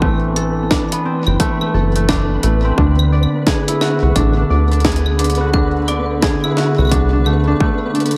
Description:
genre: IDM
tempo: 87 BPM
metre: 4/4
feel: swing 62% on 16ths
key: unclear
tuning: A4 = 438 Hz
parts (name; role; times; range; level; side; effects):
- hollow soft pad; sustained chords; 0.0-8.2 s; D3 to E3; -23 LUFS; equal; chorus, sidechain pumping
- concert harp; arpeggios; 0.0-8.2 s; A3 to D5; -22 LUFS; equal; vintage 12-bit sampler grit, delay
- deep acid bass; bass; 0.0-7.5 s; F#1 to D2; -18 LUFS; equal; none
- electronic kick drum; drums; 0.0-7.8 s; none; -21 LUFS; equal; distortion
- flickering grainy texture; texture; 0.0-8.2 s; B3 to B4; -29 LUFS; equal; built-in reverb
- jungle sampler-style drum kit; drums; 0.4-8.2 s; claves, hi-hat, snare drum; -24 LUFS; equal; delay
room: moderate plate reverb, RT60 2.1 s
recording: dreamy mix soaked in reverb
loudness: -16 LUFS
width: mono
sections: 0.0-8.2 A section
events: none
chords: 0.0 Am6; 2.8 D7

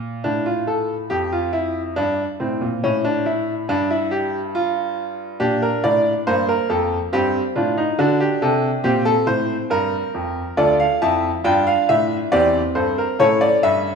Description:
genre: classical, baroque-style 4-part fugue for grand piano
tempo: 70 BPM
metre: 3/4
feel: straight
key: G minor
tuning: A4 = 437 Hz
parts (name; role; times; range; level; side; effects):
- bright baby grand piano; solo; 0.0-14.0 s; D2 to A5; -17 LUFS; equal; none
room: wet recital hall reverb, RT60 1.5 s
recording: recorded in a church or concert hall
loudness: -17 LUFS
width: side -5 dB against mid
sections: 0.0-14.0 A section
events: none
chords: 0.2 Dm/A; 2.0 Gmadd11; 2.8 A7(no3); 4.5 Fsus2/G; 5.4 Gm; 7.1 Am7b5/G; 8.0 D7; 9.7 Gm; 10.6 Dm; 12.3 Em7b5; 13.2 A7

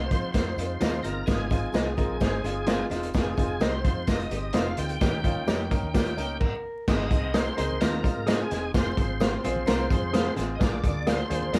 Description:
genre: uptempo 1960s-style soul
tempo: 129 BPM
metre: 4/4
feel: straight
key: Ab major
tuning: A4 = 441 Hz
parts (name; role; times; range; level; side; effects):
- bright tonewheel organ; melody; 0.0-11.6 s; Ab4 to G5; -36 LUFS; equal; chorus vibrato, slow rotary speaker
- clear grand piano; accompaniment; 0.0-11.6 s; Ab3 to Bb4; -34 LUFS; equal; none
- vintage muted fingered electric bass; bass; 0.0-11.6 s; Fb1 to F3; -35 LUFS; equal; none
- crunchy breakbeat drum kit; drums; 0.1-11.6 s; crash cymbal, hi-hat, kick drum, snare drum; -29 LUFS; equal; none
- congas; percussion; 0.1-11.6 s; none; -46 LUFS; equal; none
- tambourine; percussion; 0.1-11.6 s; none; -53 LUFS; equal; none
- mellow electric guitar; stabs; 0.8-11.2 s; F4 to F5; -34 LUFS; equal; none
- mellow electric guitar; riff; 2.0-3.1, 5.9-10.6 s; F4 to C5; -39 LUFS; equal; none
room: moderate small room ambience, RT60 0.5 s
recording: band playing live in one room, vinyl crackle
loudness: -26 LUFS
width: mono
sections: 0.0-6.9 A section; 6.9-11.6 B section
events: stop 6.4-6.9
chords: 0.0 Fm7; 1.3 Ab6; 3.1 Fm7; 5.0 Eb7; 6.9 Ab; 8.7 Fm; 10.6 Bb7

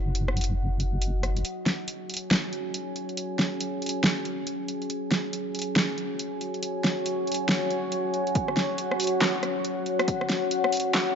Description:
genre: deep dubstep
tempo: 139 BPM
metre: 4/4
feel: swing 61% on 16ths, half-time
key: unclear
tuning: A4 = 442 Hz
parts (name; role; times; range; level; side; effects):
- deep dark ambient pad; sustained chords; 0.0-11.2 s; F#4 to G#5; -28 LUFS; left 1 dB; chorus, built-in reverb
- deep soft wobble bass; bass; 0.0-1.4 s; F#1; -26 LUFS; equal; chorus
- deep house drum kit; drums; 0.1-11.1 s; handclaps, hi-hat, rim click, snare drum; -27 LUFS; equal; overdrive
- electronic kick drum; drums; 8.4-10.2 s; none; -30 LUFS; equal; overdrive
room: moderate lush hall reverb, RT60 2.0 s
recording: dark, warm production, high-pass filter, nothing above 7.6 kHz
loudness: -25 LUFS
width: side -7 dB against mid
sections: 0.0-1.4 A section; 1.4-11.2 B section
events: build-up 1.4-11.2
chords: 0.0 N.C.; 1.4 F#5

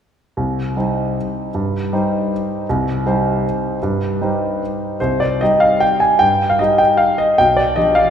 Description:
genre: classical, piano waltz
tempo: 154 BPM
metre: 3/4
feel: uneven beats, rubato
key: C minor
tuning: A4 = 440 Hz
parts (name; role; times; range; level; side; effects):
- warm concert grand piano; solo; 0.4-8.1 s; B1 to Ab5; -14 LUFS; equal; none
room: wet church reverb, RT60 3.8 s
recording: recorded in a church or concert hall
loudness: -15 LUFS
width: side -8 dB against mid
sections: 0.4-5.0 A section; 5.0-8.1 B section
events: none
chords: 0.4 Cm; 7.4 G7/B

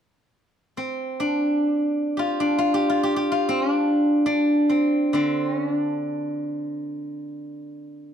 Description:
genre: chinese traditional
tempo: free time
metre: none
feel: none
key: D yu mode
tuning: A4 = 440 Hz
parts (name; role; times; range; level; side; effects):
- steel-string zither; solo; 0.8-8.1 s; D3 to G4; -21 LUFS; equal; none
room: light reverb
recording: dark, warm production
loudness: -20 LUFS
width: side -8 dB against mid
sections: 0.1-8.1 A section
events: none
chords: none

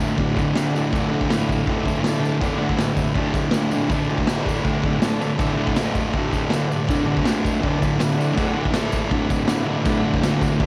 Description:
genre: garage rock duo or trio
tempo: 161 BPM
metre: 4/4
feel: straight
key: D major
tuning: A4 = 437 Hz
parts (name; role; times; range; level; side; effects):
- combo organ; sustained chords; 0.0-10.7 s; A4 to A5; -34 LUFS; equal; cassette tape, plate reverb
- thick fuzz guitar; riff; 0.0-10.7 s; D2 to D3; -23 LUFS; equal; distortion, cassette tape
- tambourine; percussion; 0.0-10.5 s; none; -45 LUFS; equal; none
- raw garage drum kit; drums; 0.2-10.7 s; crash cymbal, kick drum, snare drum; -26 LUFS; equal; vintage 12-bit sampler grit, cassette tape
room: light reverb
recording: home recording on cassette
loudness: -21 LUFS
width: mono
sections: 0.0-10.7 A section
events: none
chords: 0.0 D

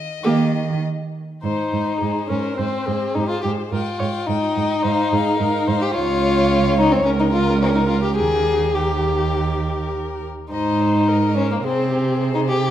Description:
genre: quick classical-period movement for string quartet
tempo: 106 BPM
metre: 4/4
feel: rubato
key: Ab major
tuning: A4 = 442 Hz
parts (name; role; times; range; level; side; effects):
- rich violin; melody; 0.0-12.7 s; Ab4 to G5; -30 LUFS; left 9 dB; none
- warm violin; second line; 0.2-12.7 s; Bb3 to Ab4; -20 LUFS; left 3 dB; none
- rich viola; accompaniment; 0.2-12.7 s; Bb3 to Eb5; -26 LUFS; right 3 dB; none
- rich cello; bass; 0.2-12.7 s; Db2 to Eb3; -22 LUFS; right 4 dB; none
room: wet recital hall reverb, RT60 1.8 s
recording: dark, warm production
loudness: -17 LUFS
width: side -11 dB against mid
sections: 0.0-1.4 A section; 1.4-12.7 B section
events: none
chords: 0.2 Eb; 1.4 Ab; 3.7 Eb/Ab; 4.8 Fm/Ab; 6.0 Db; 7.1 Bbm/Db; 8.2 Eb; 10.5 Ab; 11.6 Ab/C

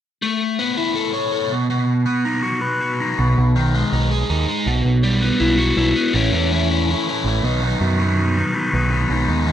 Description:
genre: rock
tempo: 162 BPM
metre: 4/4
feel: straight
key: A lydian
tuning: A4 = 440 Hz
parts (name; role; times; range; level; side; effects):
- biting overdriven guitar; riff; 0.2-9.5 s; A2 to C#5; -18 LUFS; left 1 dB; phaser
- growling picked electric bass; bass; 3.2-9.5 s; A1 to F#2; -19 LUFS; right 2 dB; overdrive
room: little or no reverb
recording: rough home demo mix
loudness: -16 LUFS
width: side -10 dB against mid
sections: 0.2-6.1 A section; 6.1-9.5 B section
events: none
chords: 0.2 Aadd9; 1.5 B; 3.2 G#m/B; 4.7 Emadd9/B; 6.1 A; 7.4 B

